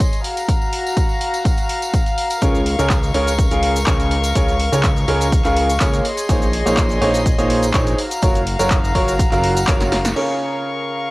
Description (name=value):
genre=piano house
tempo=124 BPM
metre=4/4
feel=straight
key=Db major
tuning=A4 = 440 Hz
part: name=dark studio string section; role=sustained chords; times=0.0-11.1 s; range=Gb4 to Db6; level=-23 LUFS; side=left 1 dB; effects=sidechain pumping, cassette tape
part: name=electronic kick drum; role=drums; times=0.0-9.8 s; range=none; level=-18 LUFS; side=equal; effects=cassette tape
part: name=punchy analog drum machine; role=drums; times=0.0-10.3 s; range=crash cymbal, handclaps, hi-hat, shaker, snare drum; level=-25 LUFS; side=equal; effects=cassette tape
part: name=tambourine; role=percussion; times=0.0-10.1 s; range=none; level=-32 LUFS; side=right 1 dB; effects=none
part: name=clear grand piano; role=riff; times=2.4-11.1 s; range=Db3 to F5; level=-20 LUFS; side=right 1 dB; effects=sidechain pumping, cassette tape
part: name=fat analog bass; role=bass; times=2.4-10.1 s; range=Gb1 to Db2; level=-21 LUFS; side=equal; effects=sidechain pumping
room=light reverb, small room ambience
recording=home recording on cassette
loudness=-15 LUFS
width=side -20 dB against mid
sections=0.0-10.2 A section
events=drum fill 9.8-10.2; band accent 10.0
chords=0.2 Gbmaj7; 2.4 Db6; 6.0 Bbm11; 8.0 Gbmaj7; 10.2 Db6